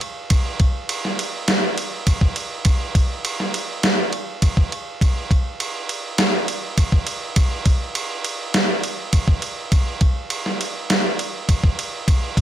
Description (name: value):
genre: rock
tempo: 102 BPM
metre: 4/4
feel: straight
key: none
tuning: none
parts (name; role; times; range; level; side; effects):
- gated 80s digital drum machine; drums; 0.0-12.4 s; kick drum, ride cymbal, snare drum; -18 LUFS; equal; gated reverb, gated reverb snare
room: little or no reverb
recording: none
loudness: -18 LUFS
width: side -12 dB against mid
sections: 0.0-12.4 A section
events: none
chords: none